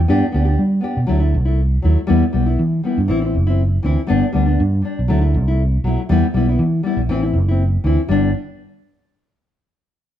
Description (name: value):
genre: highlife guitar band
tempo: 120 BPM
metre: 4/4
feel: swing 54% on 16ths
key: G major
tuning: A4 = 439 Hz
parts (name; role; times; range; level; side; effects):
- fingered electric bass; bass; 0.0-8.3 s; F#1 to G3; -16 LUFS; right 1 dB; none
- nylon-string guitar; accompaniment; 0.1-8.3 s; E3 to G4; -19 LUFS; left 3 dB; none
room: moderate stone room reverb, RT60 1.1 s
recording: band playing live in one room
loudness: -15 LUFS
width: side -11 dB against mid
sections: 0.1-8.1 A section; 8.1-10.1 B section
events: none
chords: 0.1 G; 1.1 Dadd9; 2.1 Em; 3.1 Am; 4.1 G; 5.1 Dadd9; 6.1 Em; 7.1 Am; 8.1 G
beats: | 0.08 0.58 1.08 1.58 | 2.08 2.58 3.08 3.58 | 4.09 4.59 5.09 5.59 | 6.09 6.59 7.09 7.59 | 8.09